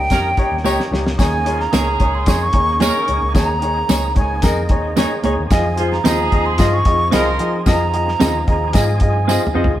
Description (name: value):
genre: uptempo 1960s-style soul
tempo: 111 BPM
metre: 4/4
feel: straight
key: unclear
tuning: A4 = 438 Hz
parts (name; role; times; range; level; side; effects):
- breathy mellow silver concert flute; melody; 0.0-9.6 s; Eb5 to Db6; -21 LUFS; right 2 dB; slapback echo
- overdriven tonewheel organ; sustained chords; 0.0-9.8 s; F3 to Ab4; -29 LUFS; right 1 dB; slow rotary speaker, chorus vibrato
- vintage muted fingered electric bass; bass; 0.0-9.8 s; C2 to F3; -21 LUFS; equal; none
- mellow horn section; second line; 0.1-7.5 s; C3 to Bb4; -24 LUFS; right 1 dB; none
- warm upright piano; accompaniment; 0.1-9.7 s; Eb3 to Eb5; -21 LUFS; left 2 dB; none
- cloth-damped thuddy drum kit; drums; 0.1-9.8 s; hi-hat, kick drum, snare drum, toms; -18 LUFS; equal; none
- tambourine; percussion; 0.1-9.4 s; none; -30 LUFS; right 5 dB; none
- semi-hollow electric guitar; stabs; 0.6-9.7 s; Bb3 to Db5; -22 LUFS; right 5 dB; none
room: moderate stone room reverb, RT60 0.9 s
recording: band playing live in one room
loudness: -14 LUFS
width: side -12 dB against mid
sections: 0.0-1.2 A section; 1.2-9.8 B section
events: band accent 0.0-1.2; drum fill 0.6-1.2, 9.3-9.8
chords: 0.0 Eb7; 1.2 Eb7sus4; 5.5 Fm7